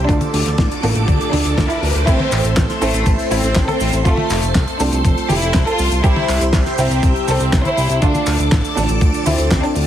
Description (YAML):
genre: italo disco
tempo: 121 BPM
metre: 4/4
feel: straight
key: unclear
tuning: A4 = 440 Hz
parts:
  - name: phased string machine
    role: sustained chords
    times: 0.0-9.9 s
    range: G4 to D6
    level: -24 LUFS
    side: equal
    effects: ensemble chorus, phaser
  - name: bright baby grand piano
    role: stabs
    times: 0.0-9.9 s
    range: A2 to A4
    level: -25 LUFS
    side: right 5 dB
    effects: digital delay
  - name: fat analog bass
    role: bass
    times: 0.0-9.9 s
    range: F1 to D2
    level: -19 LUFS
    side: equal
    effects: none
  - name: riser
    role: sound effects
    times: 0.2-2.1 s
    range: none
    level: -28 LUFS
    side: equal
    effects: none
  - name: warm studio violin section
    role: melody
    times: 0.1-9.9 s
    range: A3 to C5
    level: -20 LUFS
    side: equal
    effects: ping-pong delay
  - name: damped 70s drum kit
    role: drums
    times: 0.1-9.9 s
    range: cabasa, crash cymbal, handclaps, hi-hat, snare drum, toms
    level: -22 LUFS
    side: left 1 dB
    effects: small room ambience
  - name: electronic kick drum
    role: drums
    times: 0.1-9.6 s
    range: none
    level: -17 LUFS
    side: equal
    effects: small room ambience
room: light reverb, small room ambience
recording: heavily compressed radio sound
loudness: -14 LUFS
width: side -11 dB against mid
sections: 0.0-2.1 A section; 2.1-9.9 B section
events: riser 0.2-2.1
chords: 0.1 Dm; 2.1 Am; 4.1 F; 6.0 C; 8.0 Dm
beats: | 0.09 0.58 1.08 1.58 | 2.07 2.57 3.06 3.56 | 4.06 4.55 5.05 5.54 | 6.04 6.54 7.03 7.53 | 8.02 8.52 9.01 9.51